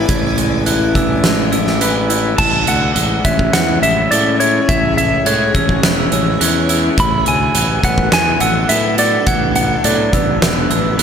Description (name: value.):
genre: post-rock.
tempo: 105 BPM.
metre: 4/4.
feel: straight.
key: A major.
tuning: A4 = 441 Hz.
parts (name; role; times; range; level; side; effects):
granular cloud pad; sustained chords; 0.0-11.0 s; B3 to G#5; -25 LUFS; equal; built-in reverb, phaser.
electric guitar through a small old amp; arpeggios; 0.0-11.0 s; A2 to B4; -21 LUFS; left 3 dB; slapback echo, digital delay.
fuzz fingered electric bass; bass; 0.0-11.0 s; E1 to A2; -19 LUFS; equal; overdrive.
glockenspiel with soft plastic mallets; arpeggios; 0.1-11.0 s; E6 to G#6; -24 LUFS; right 4 dB; slapback echo, digital delay.
huge arena drum kit; drums; 0.1-11.0 s; crash cymbal, hi-hat, kick drum, snare drum; -17 LUFS; right 1 dB; none.
clean lap steel guitar; melody; 2.4-10.4 s; C#5 to B5; -17 LUFS; equal; slapback echo, digital delay.
room: wet lush hall reverb, RT60 1.8 s, small room ambience.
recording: big arena sound.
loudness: -12 LUFS.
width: side -7 dB against mid.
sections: 0.0-2.4 A section; 2.4-11.0 B section.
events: none.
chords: 0.0 E7/A; 2.4 Amaj7; 7.0 Bm7/A.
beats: | 0.09 0.67 1.24 1.82 | 2.39 2.97 3.54 4.12 | 4.69 5.26 5.83 6.41 | 6.98 7.55 8.13 8.70 | 9.27 9.85 10.42 10.99.